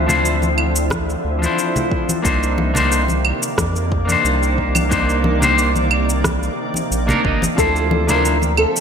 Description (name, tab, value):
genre	sunset chillout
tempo	90 BPM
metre	4/4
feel	straight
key	unclear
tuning	A4 = 440 Hz
part	clean electric guitar	accompaniment	0.0-8.4 s	F3 to Eb5	-19 LUFS	left 1 dB	auto-pan, low-pass filter, digital delay
part	shimmering ambient pad	sustained chords	0.0-8.8 s	C3 to E5	-22 LUFS	equal	chorus, built-in reverb
part	round analog bass	bass	0.0-8.7 s	G1 to F2	-20 LUFS	right 1 dB	none
part	electronic shaker, claves and rim click	drums	0.1-8.8 s	none	-24 LUFS	right 2 dB	none
part	congas	percussion	0.1-8.5 s	none	-26 LUFS	left 2 dB	none
part	electronic kick drum	drums	0.9-7.7 s	none	-23 LUFS	right 1 dB	none
part	nylon-string guitar	melody	7.6-8.8 s	A4 to Bb4	-19 LUFS	equal	ensemble chorus
room	moderate lush hall reverb, RT60 1.8 s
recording	bright 1980s-style digital production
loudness	-15 LUFS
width	side -7 dB against mid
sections	0.0-8.8 A section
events	none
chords	0.0 Dm9; 2.2 Cm9; 7.6 Dm9